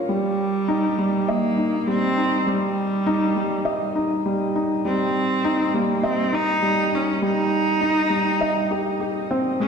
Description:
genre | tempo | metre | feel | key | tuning
electronica | 101 BPM | 4/4 | straight | unclear | A4 = 440 Hz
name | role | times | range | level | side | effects
felt-muted upright piano | riff | 0.0-9.7 s | G3 to Eb5 | -22 LUFS | equal | shimmer reverb, ping-pong delay
rich cello | melody | 0.1-9.7 s | G3 to Eb4 | -23 LUFS | right 1 dB | shimmer reverb, ping-pong delay
room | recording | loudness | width
wet recital hall reverb, RT60 1.4 s | none | -19 LUFS | side -6 dB against mid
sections
0.0-9.7 A section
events
none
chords
0.1 Cm (rootless)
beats
| 0.09 0.68 1.28 1.87 | 2.46 3.06 3.65 4.25 | 4.84 5.43 6.03 6.62 | 7.22 7.81 8.40 9.00 | 9.59

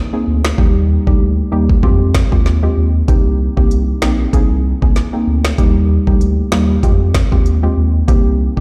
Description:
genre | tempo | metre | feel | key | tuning
dancehall | 96 BPM | 4/4 | swing 56% on 16ths | unclear | A4 = 441 Hz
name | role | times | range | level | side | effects
soft round pluck | accompaniment | 0.1-8.6 s | G3 to Ab4 | -21 LUFS | equal | chorus, sidechain pumping
saturated sub bass | bass | 0.3-8.6 s | Bb1 to F2 | -17 LUFS | equal | none
island pop drum kit | drums | 0.4-8.6 s | finger snaps, hi-hat, kick drum, snare drum | -16 LUFS | equal | none
room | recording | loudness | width
digital ambience | played on a big sound system in a bare room, large studio reverb | -14 LUFS | mono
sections
0.0-8.6 A section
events
break 0.0-3.1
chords
0.0 Abadd9; 0.6 Eb; 1.8 Fmadd9; 3.1 Cm7; 4.3 Abadd9/C; 5.6 Eb; 6.8 Fmadd9; 8.1 Cm7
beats
| 0.58 1.21 1.83 2.46 | 3.08 3.71 4.33 4.96 | 5.58 6.21 6.83 7.46 | 8.08

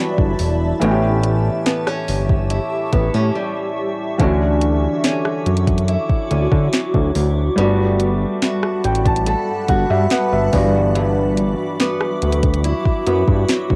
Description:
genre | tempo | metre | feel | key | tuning
contemporary R&B | 71 BPM | 4/4 | straight | D major | A4 = 439 Hz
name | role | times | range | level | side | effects
felt-muted upright piano | accompaniment | 0.0-13.8 s | E3 to A5 | -25 LUFS | equal | cassette tape
granular cloud pad | sustained chords | 0.0-13.8 s | G3 to D6 | -28 LUFS | equal | built-in reverb, cassette tape
picked old ladder-braced acoustic guitar | arpeggios | 0.0-13.8 s | G2 to A4 | -26 LUFS | equal | cassette tape, analog delay
fat analog bass | bass | 0.2-13.8 s | E1 to D3 | -20 LUFS | equal | none
smooth R&B drum kit | drums | 0.2-13.8 s | hi-hat, kick drum, rim click, snare drum | -21 LUFS | equal | cassette tape
room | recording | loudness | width
light reverb | home recording on cassette | -18 LUFS | mono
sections
0.0-13.8 A section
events
break 3.4-4.2; felt piano fill 8.4-11.0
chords
0.0 Em11; 0.8 A7; 4.2 Dmaj9; 7.6 Gmaj9; 10.5 Em9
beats
| 0.81 1.66 2.50 3.35 | 4.20 5.04 5.88 6.73 | 7.58 8.42 9.27 10.11 | 10.96 11.80 12.65 13.49

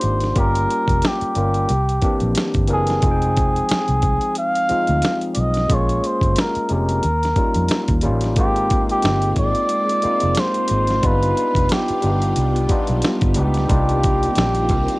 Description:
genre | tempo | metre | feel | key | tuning
R&B, neo-soul | 90 BPM | 4/4 | swing 56% on 16ths | unclear | A4 = 440 Hz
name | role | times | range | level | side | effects
trumpet with cup mute | melody | 0.0-15.0 s | G4 to F5 | -21 LUFS | equal | cassette tape
overdriven tine electric piano | accompaniment | 0.0-15.0 s | E3 to G5 | -23 LUFS | left 1 dB | cassette tape
vintage muted fingered electric bass | bass | 0.0-14.9 s | F1 to F2 | -21 LUFS | equal | none
dusty soul sampler-style drum kit | drums | 0.0-15.0 s | hi-hat, kick drum, snare drum | -21 LUFS | equal | cassette tape
phased string machine | sustained chords | 8.3-15.0 s | Eb3 to F4 | -29 LUFS | equal | ensemble chorus, phaser, cassette tape
room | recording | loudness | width
light reverb | home recording on cassette | -16 LUFS | side -22 dB against mid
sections
0.0-15.0 A section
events
none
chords
0.4 Gm7b5; 1.7 C7; 3.0 Fm9; 5.7 Bbm9; 7.0 Eb7; 8.4 Ab6; 11.0 G7b13; 13.7 Cm11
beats
| 0.36 1.03 1.70 2.36 | 3.03 3.70 4.36 5.03 | 5.70 6.36 7.03 7.70 | 8.36 9.03 9.70 10.36 | 11.03 11.70 12.36 13.03 | 13.70 14.36

